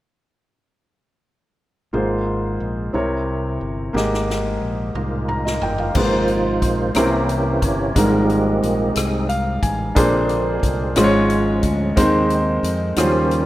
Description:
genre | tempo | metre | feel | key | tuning
slow gospel | 60 BPM (dotted quarters) | 6/8 | straight | Ab major | A4 = 441 Hz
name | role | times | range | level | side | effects
clear concert grand piano | accompaniment | 1.9-13.5 s | Ab2 to Bb5 | -19 LUFS | equal | none
modern bright fingered electric bass | bass | 1.9-13.5 s | G1 to F2 | -24 LUFS | equal | none
swinging big-band drum kit | drums | 4.0-13.5 s | crash cymbal, hi-hat, kick drum, rim click, snare drum, toms | -24 LUFS | equal | none
percussive tonewheel organ | sustained chords | 5.0-13.5 s | C3 to Db5 | -24 LUFS | right 2 dB | chorus vibrato, stopped rotary speaker
room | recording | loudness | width
light reverb | rough home demo mix | -17 LUFS | side -15 dB against mid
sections
1.9-6.0 A section; 6.0-13.5 B section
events
drum fill 4.0-6.0; grand piano fill 5.0-6.0, 9.0-10.0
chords
1.9 Ab69; 2.9 C7b9; 4.0 Fm11/Ab; 6.0 Ab69; 7.0 C7b9; 8.0 Fm11/Ab; 10.0 Bb9; 11.0 Db/Ab; 12.0 Ab/Eb

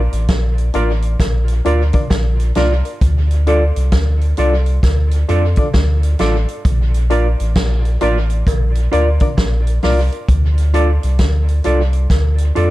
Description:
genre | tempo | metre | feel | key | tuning
roots reggae | 66 BPM | 4/4 | swing 63% on 16ths | D minor | A4 = 441 Hz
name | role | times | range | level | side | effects
warm sub bass | bass | 0.0-12.7 s | A1 to F2 | -15 LUFS | equal | none
vintage drum kit | drums | 0.1-12.7 s | hi-hat, kick drum, snare drum | -18 LUFS | equal | dub echo
cowbell | percussion | 0.3-12.4 s | none | -30 LUFS | left 2 dB | none
barky reed electric piano | stabs | 0.7-12.7 s | D4 to D5 | -21 LUFS | left 2 dB | overdrive, tremolo
mellow electric guitar | accompaniment | 0.8-12.7 s | F4 to D5 | -23 LUFS | right 2 dB | dub echo
room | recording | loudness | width
little or no reverb | dark, warm production | -13 LUFS | side -17 dB against mid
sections
0.0-12.7 A section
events
none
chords
0.0 Bb; 3.0 Dm; 6.6 Bb; 10.3 Dm

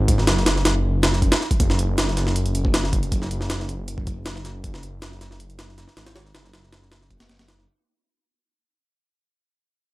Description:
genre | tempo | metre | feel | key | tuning
drum and bass, jungle | 158 BPM | 4/4 | straight | unclear | A4 = 440 Hz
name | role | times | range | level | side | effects
detuned saw bass | bass | 0.0-7.7 s | F#1 to G#1 | -23 LUFS | equal | none
jungle sampler-style drum kit | drums | 0.1-7.7 s | hi-hat, kick drum, snare drum | -21 LUFS | equal | overdrive, small room reverb
room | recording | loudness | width
little or no reverb | none | -19 LUFS | side -19 dB against mid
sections
0.0-7.7 A section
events
fade-out 0.0-7.7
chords
none

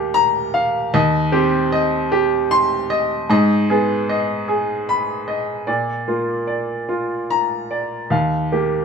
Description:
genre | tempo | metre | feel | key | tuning
neoclassical minimalist piano | 50 BPM (dotted quarters) | 6/8 | rubato | Eb major | A4 = 440 Hz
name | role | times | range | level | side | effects
bright baby grand piano | solo | 0.0-8.8 s | Eb2 to C6 | -17 LUFS | equal | none
room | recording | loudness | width
moderate stone room reverb, RT60 1.1 s | band playing live in one room, faint mains hum | -17 LUFS | side -6 dB against mid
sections
0.0-8.8 A section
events
none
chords
0.0 Ebadd9; 0.9 Cm/Eb; 3.3 Abm; 5.7 Bb; 8.1 Ebadd9

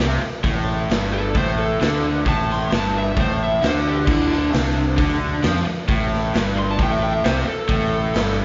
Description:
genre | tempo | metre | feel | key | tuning
blues rock power trio and southern rock | 132 BPM | 4/4 | straight | unclear | A4 = 440 Hz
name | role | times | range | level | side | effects
raw garage guitar | riff | 0.0-8.4 s | G2 to F3 | -25 LUFS | equal | overdrive, slapback echo
fuzz fingered electric bass | bass | 0.0-8.4 s | G1 to F2 | -27 LUFS | equal | overdrive
raw garage drum kit | drums | 0.0-8.3 s | crash cymbal, hi-hat, kick drum, snare drum | -25 LUFS | equal | none
lead guitar through a small cranked amp | melody | 1.1-8.3 s | D4 to C6 | -27 LUFS | equal | overdrive
room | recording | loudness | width
light reverb | live gig heard through the venue's PA, club ambience, nothing above 7.5 kHz | -20 LUFS | mono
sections
0.0-8.4 A section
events
lead electric guitar solo 0.0-8.4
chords
0.0 Gsus24; 4.1 Csus2; 5.9 Gsus24

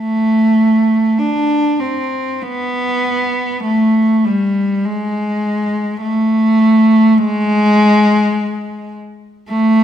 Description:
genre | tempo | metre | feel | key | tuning
classical, free, expressive piece for unaccompanied cello | 47-56 BPM | 4/4 | rubato | unclear | A4 = 443 Hz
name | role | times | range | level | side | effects
warm cello | solo | 0.0-9.8 s | G3 to D4 | -12 LUFS | equal | none
room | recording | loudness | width
wet recital hall reverb, RT60 1.6 s | minimal, uncompressed stereo recording | -12 LUFS | side -10 dB against mid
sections
0.0-9.8 A section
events
none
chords
none

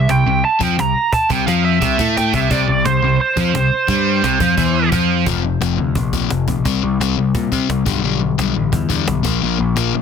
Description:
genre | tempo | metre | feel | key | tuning
punk rock | 173 BPM | 4/4 | straight | C mixolydian | A4 = 441 Hz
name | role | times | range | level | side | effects
biting lead guitar | melody | 0.0-4.9 s | C5 to Bb5 | -18 LUFS | right 4 dB | overdrive, digital delay
distorted electric guitar | riff | 0.0-5.3 s | C3 to A3 | -19 LUFS | right 13 dB | distortion
overdriven semi-hollow guitar | riff | 0.0-10.0 s | F2 to C4 | -18 LUFS | left 12 dB | none
growling picked electric bass | bass | 0.0-10.0 s | F1 to C3 | -21 LUFS | right 1 dB | overdrive
cajon | drums | 0.1-9.9 s | none | -24 LUFS | right 1 dB | none
room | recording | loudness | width
little or no reverb | dense, heavily limited modern master | -14 LUFS | side -7 dB against mid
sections
0.0-5.3 A section; 5.3-10.0 B section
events
kick and snare drop out 4.9-5.3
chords
0.0 C; 5.3 F5; 6.7 C5; 7.9 G/B; 9.3 Bb5

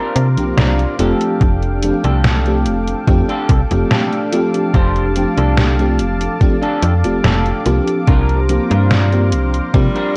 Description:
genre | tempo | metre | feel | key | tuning
vaporwave | 72 BPM | 4/4 | straight | F major | A4 = 439 Hz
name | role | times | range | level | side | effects
lush unison pad | sustained chords | 0.0-10.2 s | A4 to D6 | -27 LUFS | equal | chorus
semi-hollow electric guitar | riff | 0.0-10.2 s | D4 to C5 | -25 LUFS | equal | analog chorus, low-pass filter, analog delay
slap-like FM bass | bass | 0.2-9.9 s | F1 to C3 | -18 LUFS | equal | none
detuned 8-bit digital drum machine | drums | 0.2-10.1 s | hi-hat, snare drum | -21 LUFS | equal | gated reverb
FM electric piano with soft pad layer | accompaniment | 0.4-9.9 s | F3 to G4 | -21 LUFS | equal | ensemble chorus, analog delay
electronic kick drum | drums | 1.4-9.9 s | none | -16 LUFS | equal | none
clear tenor saxophone | melody | 9.7-10.1 s | G3 | -23 LUFS | equal | none
room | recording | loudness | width
light reverb | cassette tape | -15 LUFS | mono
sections
0.0-10.2 A section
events
none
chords
0.0 C9sus4; 1.0 F69; 8.1 C9sus4

